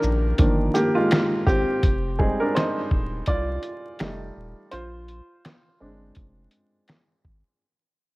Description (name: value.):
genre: lo-fi hip hop.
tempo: 83 BPM.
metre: 4/4.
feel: swing 58% on 16ths.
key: unclear.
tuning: A4 = 440 Hz.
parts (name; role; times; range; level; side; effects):
warm upright piano; accompaniment; 0.0-7.6 s; Eb3 to D5; -23 LUFS; equal; cassette tape, low-pass filter.
warm sub bass; bass; 0.0-7.4 s; Eb1 to C2; -28 LUFS; equal; transformer saturation.
lo-fi sampler-style drum kit; drums; 0.0-7.4 s; finger snaps, hi-hat, kick drum, shaker, snare drum; -22 LUFS; equal; vintage 12-bit sampler grit.
room: light reverb, digital ambience.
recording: worn, warbling old tape, cassette tape, vinyl crackle, warbly pitch drift.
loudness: -20 LUFS.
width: side -22 dB against mid.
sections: 0.0-7.6 A section.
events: fade-out 0.0-7.6; upright piano solo 0.0-7.6.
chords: 0.0 Cm11; 1.8 Fm9; 4.0 F9; 4.7 Bb9.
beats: 0.38 1.10 | 1.83 2.55 3.27 4.00 | 4.72 5.44 6.16 6.89.